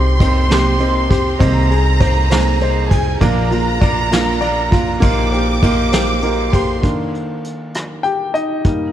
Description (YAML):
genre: six-eight pop ballad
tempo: 66 BPM (dotted quarters)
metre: 6/8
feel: straight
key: Eb major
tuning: A4 = 440 Hz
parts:
  - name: rich studio violin section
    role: second line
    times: 0.0-6.8 s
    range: Ab5 to D6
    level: -21 LUFS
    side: right 2 dB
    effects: none
  - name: clear concert grand piano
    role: accompaniment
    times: 0.0-8.9 s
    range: Eb3 to G5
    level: -19 LUFS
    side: left 2 dB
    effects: none
  - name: fingerpicked steel-string acoustic guitar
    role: arpeggios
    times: 0.0-6.8 s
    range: Bb2 to C5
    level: -22 LUFS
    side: right 4 dB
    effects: ping-pong delay
  - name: upright bass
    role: bass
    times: 0.0-6.8 s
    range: Bb1 to C2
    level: -18 LUFS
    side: equal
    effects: none
  - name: vintage brush drum kit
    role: drums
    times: 0.2-8.8 s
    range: hi-hat, kick drum, ride cymbal, rim click, snare drum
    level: -18 LUFS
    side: equal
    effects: none
room: light reverb, studio reverb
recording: dark, warm production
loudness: -13 LUFS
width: side -11 dB against mid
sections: 0.0-6.8 A section; 6.8-8.9 B section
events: grand piano solo 6.8-8.9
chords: 0.0 Cm7; 1.4 Abadd9/C; 3.2 Bb; 5.0 Eb6/Bb; 6.8 Ebmaj7